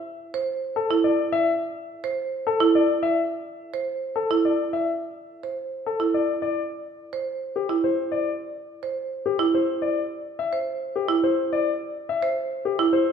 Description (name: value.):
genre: classical, minimalist pattern music.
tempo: 106 BPM.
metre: 3/4.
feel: straight.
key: unclear.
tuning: A4 = 445 Hz.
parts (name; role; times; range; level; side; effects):
marimba with medium hard mallets; arpeggios; 0.3-13.0 s; E4 to C5; -24 LUFS; right 5 dB; none.
warm baby grand piano; melody; 0.8-13.1 s; G4 to E5; -25 LUFS; left 6 dB; none.
room: wet recital hall reverb, RT60 1.6 s.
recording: recorded in a church or concert hall.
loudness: -22 LUFS.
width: side -7 dB against mid.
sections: 0.0-13.1 A section.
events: none.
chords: none.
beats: 0.20 0.77 | 1.33 1.90 2.46 | 3.03 3.60 4.16 | 4.73 5.29 5.86 | 6.43 6.99 7.56 | 8.12 8.69 9.26 | 9.82 10.39 10.96 | 11.52 12.09 12.65.